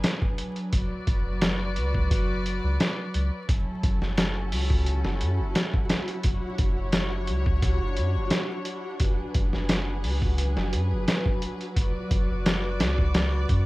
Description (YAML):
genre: trip hop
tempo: 87 BPM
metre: 4/4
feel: straight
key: unclear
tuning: A4 = 438 Hz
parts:
  - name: dark studio string section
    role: sustained chords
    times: 0.0-13.7 s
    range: F#3 to D5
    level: -32 LUFS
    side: equal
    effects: none
  - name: soft dub sub bass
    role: bass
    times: 0.0-13.7 s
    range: F#1 to F#2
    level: -26 LUFS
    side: equal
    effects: tube saturation
  - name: trip hop sampler-style drum kit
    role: drums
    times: 0.0-13.7 s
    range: hi-hat, kick drum, snare drum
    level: -25 LUFS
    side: equal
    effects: none
  - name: flickering grainy texture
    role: texture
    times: 3.9-13.7 s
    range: F#4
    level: -37 LUFS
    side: equal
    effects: built-in reverb
room: little or no reverb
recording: rough home demo mix, vinyl crackle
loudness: -23 LUFS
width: side -20 dB against mid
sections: 0.0-13.7 A section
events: none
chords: 0.0 Bm6/F#; 0.7 Bm/F#; 3.5 F#m7; 6.2 Dmaj7/F#; 9.0 Bm69/F#; 11.8 Bm/F#